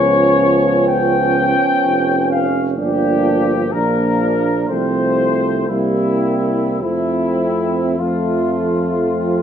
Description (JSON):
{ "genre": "classical, hymn-like piece for brass band", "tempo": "50-65 BPM", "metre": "4/4", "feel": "rubato", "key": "F major", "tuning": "A4 = 439 Hz", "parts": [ { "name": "mellow trumpet section", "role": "melody", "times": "0.0-9.4 s", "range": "E4 to G5", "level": "-19 LUFS", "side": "left 4 dB", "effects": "none" }, { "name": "warm French horn section", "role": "second line", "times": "0.0-9.4 s", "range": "A3 to D4", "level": "-21 LUFS", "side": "right 6 dB", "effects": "none" }, { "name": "warm euphonium", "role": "accompaniment", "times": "0.0-9.4 s", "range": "A3 to Cb4", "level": "-22 LUFS", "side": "left 2 dB", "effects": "none" }, { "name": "warm trombone", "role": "accompaniment", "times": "0.0-9.4 s", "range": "F3 to G3", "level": "-22 LUFS", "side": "right 3 dB", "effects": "none" }, { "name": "warm tuba", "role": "bass", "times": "0.0-9.4 s", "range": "F1 to F2", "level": "-21 LUFS", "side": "equal", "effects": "none" } ], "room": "moderate recital hall reverb, RT60 1.4 s", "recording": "none", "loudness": "-14 LUFS", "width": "side -8 dB against mid", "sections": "0.0-9.4 A section", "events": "none", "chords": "0.0 Db7; 2.8 Gm7; 4.7 F/C; 5.7 C7; 6.8 F" }